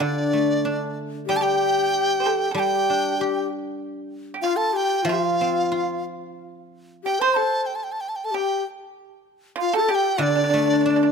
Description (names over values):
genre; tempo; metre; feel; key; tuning
chinese traditional, Chinese chamber ensemble; 94 BPM; 2/4; rubato; D yu mode; A4 = 438 Hz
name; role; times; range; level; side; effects
mellow hollow large dizi; melody; 0.0-11.1 s; D5 to C6; -24 LUFS; right 3 dB; none
breathy bright xiao; second line; 0.0-11.1 s; D4 to C5; -25 LUFS; left 10 dB; none
pipa; second line; 0.0-11.1 s; D4 to C5; -27 LUFS; right 8 dB; none
guzheng; accompaniment; 0.0-7.0, 10.2-11.1 s; D3 to G4; -25 LUFS; right 1 dB; none
room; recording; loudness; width
light reverb; close, detailed microphones; -20 LUFS; side -6 dB against mid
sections
0.0-1.3 A section; 1.3-11.1 B section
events
none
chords
none